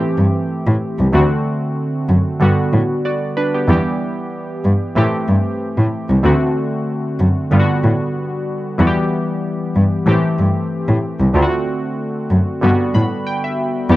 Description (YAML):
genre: afrobeats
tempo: 94 BPM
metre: 4/4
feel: swing 55% on 16ths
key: unclear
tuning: A4 = 440 Hz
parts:
  - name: glassy digital keys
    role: accompaniment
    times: 0.0-14.0 s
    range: D3 to B5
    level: -18 LUFS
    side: equal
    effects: chorus
  - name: dark cello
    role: bass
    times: 0.2-14.0 s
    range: C2 to A2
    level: -15 LUFS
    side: equal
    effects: none
room: studio ambience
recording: worn, warbling old tape, cassette tape, warbly pitch drift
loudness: -15 LUFS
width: side -16 dB against mid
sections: 0.0-13.9 A section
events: synth keys fill 12.6-13.9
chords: 0.0 Am7; 1.1 D7; 2.4 Gmaj7; 3.7 Em; 5.0 Am7; 6.2 D7; 7.5 Gmaj7; 8.8 Em; 10.1 Am7; 11.3 D7; 12.6 Gmaj7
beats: 0.50 | 1.14 1.77 2.41 3.05 | 3.69 4.33 4.96 5.60 | 6.24 6.88 7.52 8.16 | 8.79 9.43 10.07 10.71 | 11.35 11.99 12.62 13.26 | 13.90